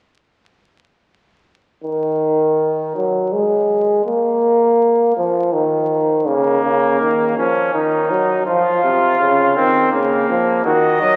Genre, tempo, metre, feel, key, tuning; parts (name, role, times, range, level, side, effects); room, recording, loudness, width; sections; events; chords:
classical, imitative canzona for brass ensemble; 82 BPM; 3/4; straight; A4 = 440 Hz
clear euphonium; accompaniment; 1.8-11.2 s; C3 to Bb3; -18 LUFS; equal
mellow trumpet; second line; 6.3-11.2 s; Bb3 to Gb4; -19 LUFS; equal
mellow trumpet; melody; 10.6-11.2 s; Eb5; -20 LUFS; equal
wet church reverb, RT60 3.0 s; very old 78 rpm record, vinyl crackle; -16 LUFS; mono
1.8-11.2 A section
1.8 N.C.; 6.3 Bbm/Db; 7.7 Ebm; 8.5 F5; 9.9 Bbm/Db; 10.6 Ebm